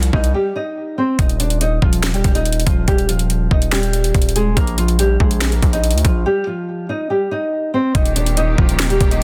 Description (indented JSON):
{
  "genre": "hip hop, trap",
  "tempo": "142 BPM",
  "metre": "4/4",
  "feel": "half-time",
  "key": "Eb major",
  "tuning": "A4 = 441 Hz",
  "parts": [
    { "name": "nylon-string guitar", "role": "melody", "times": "0.0-9.2 s", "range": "F3 to Eb5", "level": "-22 LUFS", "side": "equal", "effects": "none" },
    { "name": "distorted 808-style bass", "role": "bass", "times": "0.0-9.2 s", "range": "Eb1 to D2", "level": "-20 LUFS", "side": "equal", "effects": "distortion" },
    { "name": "trap drum kit", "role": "drums", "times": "0.0-9.2 s", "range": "finger snaps, hi-hat, kick drum, snare drum", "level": "-20 LUFS", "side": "equal", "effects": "none" },
    { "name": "muted studio string section", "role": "sustained chords", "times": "7.9-9.2 s", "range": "Eb3 to G4", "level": "-28 LUFS", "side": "equal", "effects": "none" }
  ],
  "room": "studio reverb",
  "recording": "dense, heavily limited modern master",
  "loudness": "-17 LUFS",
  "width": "mono",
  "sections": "0.0-7.9 A section; 7.9-9.2 B section",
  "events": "break 0.3-1.2, 6.3-7.9",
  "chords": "0.0 Cm; 1.2 Eb; 4.6 Bb5; 6.3 Cm; 7.9 Eb"
}